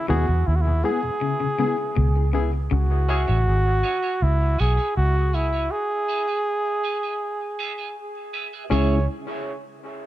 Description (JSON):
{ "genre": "reggae", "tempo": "80 BPM", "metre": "4/4", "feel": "straight", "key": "C# minor", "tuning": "A4 = 439 Hz", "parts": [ { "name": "warm flugelhorn", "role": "melody", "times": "0.0-9.1 s", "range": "E4 to C#5", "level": "-25 LUFS", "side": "right 1 dB", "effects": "dub echo" }, { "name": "mellow tonewheel organ", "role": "accompaniment", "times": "0.1-9.0 s", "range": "E2 to E4", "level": "-31 LUFS", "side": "equal", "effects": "slow rotary speaker, high-pass filter" }, { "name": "electric guitar at the edge of break-up", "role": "arpeggios", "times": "0.1-2.9, 8.7-8.9 s", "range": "B2 to C#3", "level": "-31 LUFS", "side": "left 6 dB", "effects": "tremolo, dub echo" }, { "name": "barky reed electric piano", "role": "stabs", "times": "0.1-3.3, 8.7-9.0 s", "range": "B3 to G#4", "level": "-29 LUFS", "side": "left 4 dB", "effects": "overdrive, fast tremolo, high-pass filter, dub echo" }, { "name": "vintage muted fingered electric bass", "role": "bass", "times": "0.1-9.1 s", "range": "G#1 to E2", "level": "-20 LUFS", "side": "equal", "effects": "none" }, { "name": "clean electric guitar", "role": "accompaniment", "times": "3.1-8.9 s", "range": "G#4 to E5", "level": "-33 LUFS", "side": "right 7 dB", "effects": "wide subtle chorus, high-pass filter, dub echo" } ], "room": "light reverb, digital ambience", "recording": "none", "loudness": "-20 LUFS", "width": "side -14 dB against mid", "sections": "0.0-8.7 A section; 8.7-10.1 B section", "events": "break 0.0-2.7, 5.7-8.7; filter sweep 0.0-8.7", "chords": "0.0 E; 2.7 C#m; 5.7 E; 8.7 C#m" }